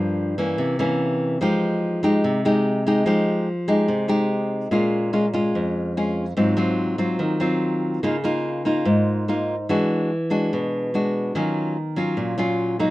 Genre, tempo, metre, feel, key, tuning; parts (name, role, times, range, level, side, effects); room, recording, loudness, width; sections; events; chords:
bossa nova; 145 BPM; 4/4; straight; F minor, Bb minor from 4.7 s; A4 = 440 Hz
nylon-string guitar; solo; 0.0-12.9 s; F2 to G4; -20 LUFS; equal
moderate small room reverb, RT60 0.6 s; dark, warm production; -20 LUFS; side -17 dB against mid
0.0-4.7 A section; 4.7-12.9 B section
0.0 Gm7; 0.6 C7b9; 1.4 Fm9; 4.7 Bbm7; 6.4 Ab6; 8.0 Db69; 9.7 E9; 11.3 Ebm9